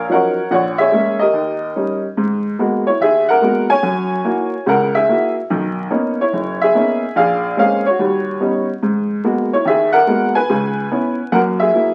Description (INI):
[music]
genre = solo jazz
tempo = 144 BPM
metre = 4/4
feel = swing 65% on 8ths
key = G# minor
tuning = A4 = 439 Hz
[part]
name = warm upright piano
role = solo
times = 0.0-11.9 s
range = F#1 to G#5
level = -16 LUFS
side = equal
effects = none
[sound]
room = moderate studio reverb, RT60 0.8 s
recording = very old 78 rpm record, vinyl crackle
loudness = -16 LUFS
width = mono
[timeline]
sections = 0.0-2.2 A section; 2.2-11.9 B section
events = none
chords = 0.0 Ebm9; 0.5 Bbm7b5; 1.3 Eb7; 2.2 G#m9; 3.8 F#7; 5.5 Bmaj9; 7.2 A#m9; 8.0 D#7alt; 8.8 G#m9; 10.5 C#m7; 11.3 F#7